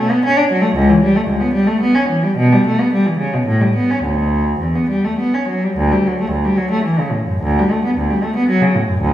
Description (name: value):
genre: classical, baroque-style suite movement for unaccompanied cello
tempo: 102-118 BPM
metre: 3/4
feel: rubato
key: D major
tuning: A4 = 440 Hz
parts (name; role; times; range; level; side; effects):
- warm cello; solo; 0.0-9.1 s; C#2 to D4; -13 LUFS; equal; none
room: wet recital hall reverb, RT60 1.4 s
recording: heard from further back in the room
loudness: -13 LUFS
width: side -12 dB against mid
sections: 0.0-5.8 A section; 5.8-9.1 B section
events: none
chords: none